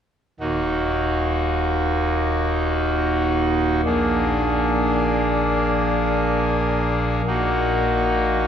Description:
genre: classical, chorale-style piece for pipe organ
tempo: free time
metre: none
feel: none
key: Eb minor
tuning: A4 = 440 Hz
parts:
  - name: pipe organ, trumpet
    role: solo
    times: 0.4-8.5 s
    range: Eb1 to Ab4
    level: -18 LUFS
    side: equal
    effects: none
room: wet cathedral reverb, RT60 5.4 s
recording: heard from further back in the room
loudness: -18 LUFS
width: side -8 dB against mid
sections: 0.4-8.5 A section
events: none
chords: 0.4 Ebm; 3.9 Bb7; 7.3 Ebm/Bb

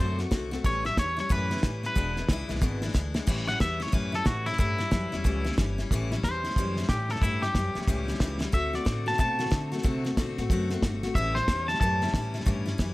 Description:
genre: rockabilly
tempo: 183 BPM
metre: 4/4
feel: swing 62% on 8ths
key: A mixolydian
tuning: A4 = 440 Hz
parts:
  - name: twangy electric guitar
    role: melody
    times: 0.0-12.8 s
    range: E4 to A5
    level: -30 LUFS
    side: equal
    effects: plate reverb, tape echo
  - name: picked steel-string acoustic guitar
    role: accompaniment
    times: 0.0-12.9 s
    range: E2 to F#4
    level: -33 LUFS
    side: left 3 dB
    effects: none
  - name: upright bass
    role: bass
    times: 0.0-12.9 s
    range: E1 to D3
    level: -31 LUFS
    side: equal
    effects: none
  - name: cloth-damped thuddy drum kit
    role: drums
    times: 0.2-12.9 s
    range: crash cymbal, hi-hat, kick drum, snare drum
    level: -28 LUFS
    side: equal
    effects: none
room: light reverb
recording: none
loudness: -25 LUFS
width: side -19 dB against mid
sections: 0.0-3.3 A section; 3.3-12.9 B section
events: drum fill 3.0-3.3, 8.4; clean electric guitar solo 3.3-12.9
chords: 0.0 D7; 0.7 A7; 2.0 E7; 3.3 A7; 8.5 D7; 11.2 A7

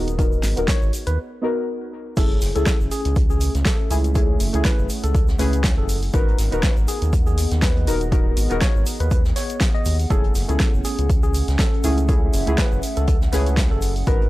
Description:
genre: deep house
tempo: 121 BPM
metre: 4/4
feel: swing 56% on 16ths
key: F# dorian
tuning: A4 = 440 Hz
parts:
  - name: deep mellow chord stab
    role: stabs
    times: 0.0-14.3 s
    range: A3 to A#4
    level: -26 LUFS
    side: left 2 dB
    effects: chorus, sidechain pumping
  - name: round analog bass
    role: bass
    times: 0.0-14.3 s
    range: D#1 to D#2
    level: -21 LUFS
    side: equal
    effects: tube saturation, sidechain pumping
  - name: warbly tape-like pad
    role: texture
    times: 0.0-14.3 s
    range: A3 to F#5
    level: -32 LUFS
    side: right 2 dB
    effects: chorus, built-in reverb, sidechain pumping
  - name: deep house drum kit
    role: drums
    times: 0.1-14.2 s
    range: crash cymbal, hi-hat, snare drum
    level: -27 LUFS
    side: equal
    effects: none
  - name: egg shaker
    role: percussion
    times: 0.1-14.2 s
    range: none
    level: -39 LUFS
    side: right 2 dB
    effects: none
  - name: electronic kick drum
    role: drums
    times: 0.2-14.2 s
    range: none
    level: -20 LUFS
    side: equal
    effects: none
  - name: jazz brush drum kit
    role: drums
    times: 0.2-14.3 s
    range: hi-hat, snare drum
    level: -36 LUFS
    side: right 1 dB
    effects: high-pass filter on hats, high-pass filter on snare, high-pass filter on room
  - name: bright tine electric piano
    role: melody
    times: 0.7-14.3 s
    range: G#4 to D#5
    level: -31 LUFS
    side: left 1 dB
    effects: medium stereo tremolo, vintage 12-bit sampler grit, tape echo
room: small room ambience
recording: transformer saturation, faint mains hum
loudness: -17 LUFS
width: side -17 dB against mid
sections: 0.0-2.2 A section; 2.2-14.3 B section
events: break 1.2-2.2; drop 2.2-14.3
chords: 0.0 G#m7; 2.2 F#m7; 6.1 G#m7; 10.1 F#m7

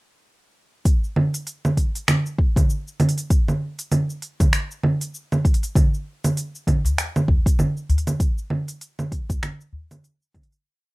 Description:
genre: downtempo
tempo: 98 BPM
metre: 4/4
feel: swing 58% on 16ths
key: none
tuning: none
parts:
  - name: afro-pop drum kit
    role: drums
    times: 0.9-10.6 s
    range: cabasa, congas, finger snaps, hi-hat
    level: -22 LUFS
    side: right 1 dB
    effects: none
  - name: electronic kick drum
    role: drums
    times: 0.9-10.5 s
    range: none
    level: -19 LUFS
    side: equal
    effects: none
  - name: udu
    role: percussion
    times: 6.8-9.9 s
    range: none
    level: -22 LUFS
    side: left 1 dB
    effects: none
room: moderate studio ambience, RT60 0.5 s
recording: rough home demo mix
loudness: -20 LUFS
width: side -22 dB against mid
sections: 0.9-10.7 chorus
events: fade-out 7.4-10.7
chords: none

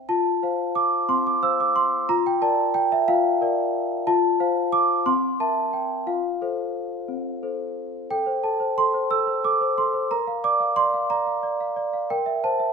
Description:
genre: classical, lullaby for celesta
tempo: 60 BPM (dotted quarters)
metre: 6/8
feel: straight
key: F major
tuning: A4 = 442 Hz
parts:
  - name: large celesta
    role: solo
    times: 0.0-12.7 s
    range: C4 to E6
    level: -20 LUFS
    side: equal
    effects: none
room: moderate concert hall reverb, RT60 2.1 s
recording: minimal, uncompressed stereo recording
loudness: -20 LUFS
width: side -5 dB against mid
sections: 0.0-8.1 A section; 8.1-12.7 B section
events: none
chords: 0.1 F; 2.1 Bb/F; 4.1 F; 5.1 C7; 6.1 F; 8.1 Am; 10.1 Bb; 12.1 C7/Bb

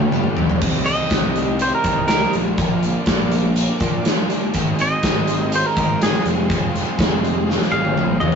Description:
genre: indie rock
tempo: 123 BPM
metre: 4/4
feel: straight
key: C minor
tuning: A4 = 440 Hz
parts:
  - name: phased analog pad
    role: sustained chords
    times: 0.0-8.4 s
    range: G4 to Eb6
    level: -31 LUFS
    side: right 1 dB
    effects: phaser, chorus
  - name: crunchy overdriven guitar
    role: riff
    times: 0.0-8.4 s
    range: G2 to Ab4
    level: -29 LUFS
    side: left 5 dB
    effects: none
  - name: crunchy overdriven guitar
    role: riff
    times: 0.0-8.4 s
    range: G2 to F4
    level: -28 LUFS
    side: right 5 dB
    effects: none
  - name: fuzz picked electric bass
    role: bass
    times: 0.0-8.4 s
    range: F1 to Bb2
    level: -23 LUFS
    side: equal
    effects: overdrive
  - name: big rock drum kit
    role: drums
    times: 0.0-8.4 s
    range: crash cymbal, hi-hat, kick drum, snare drum, toms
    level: -19 LUFS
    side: left 1 dB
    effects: none
  - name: twangy electric guitar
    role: melody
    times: 0.9-8.4 s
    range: Ab4 to F5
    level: -21 LUFS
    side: right 2 dB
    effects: none
room: light reverb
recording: rough rehearsal-room recording, warm saturation, nothing above 7.7 kHz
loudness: -16 LUFS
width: side -6 dB against mid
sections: 0.6-8.4 A section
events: drum fill 0.0-0.6, 7.5-8.4; clean electric guitar solo 0.6-8.4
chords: 0.0 G; 0.6 Cm; 2.4 Bb; 4.6 Ab; 6.3 Fmadd9

